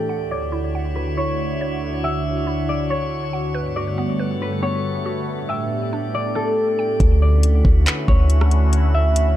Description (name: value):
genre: hip hop, atmospheric cloud-rap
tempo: 139 BPM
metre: 4/4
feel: half-time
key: D major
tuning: A4 = 440 Hz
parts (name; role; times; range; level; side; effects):
- concert harp; melody; 0.0-9.4 s; A4 to E5; -25 LUFS; equal; low-pass filter, ping-pong delay
- sweeping resonant pad; sustained chords; 0.0-9.4 s; D2 to C#5; -25 LUFS; left 1 dB; chorus, sidechain pumping, low-pass filter
- mallet-like synth pluck; arpeggios; 0.0-7.0 s; B3 to G5; -31 LUFS; right 5 dB; chorus, low-pass filter, ping-pong delay
- drifting glass-harmonics texture; texture; 0.0-9.4 s; G3 to E5; -30 LUFS; equal; chorus, built-in reverb
- warm 808-style bass; bass; 7.0-9.4 s; D2; -15 LUFS; equal; none
- smooth R&B drum kit; drums; 7.0-9.3 s; handclaps, hi-hat, kick drum, rim click; -17 LUFS; equal; none
room: digital ambience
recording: dark, warm production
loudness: -18 LUFS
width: side -13 dB against mid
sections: 0.0-7.0 A section; 7.0-9.4 B section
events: filter sweep 0.0-7.0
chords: 0.1 Dmaj9; 3.5 Gmaj9#11; 5.3 A7sus4; 7.0 Dmaj9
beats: | 0.10 0.53 0.96 1.39 | 1.82 2.25 2.69 3.12 | 3.55 3.98 4.41 4.84 | 5.28 5.71 6.14 6.57 | 7.00 7.43 7.87 8.30 | 8.73 9.16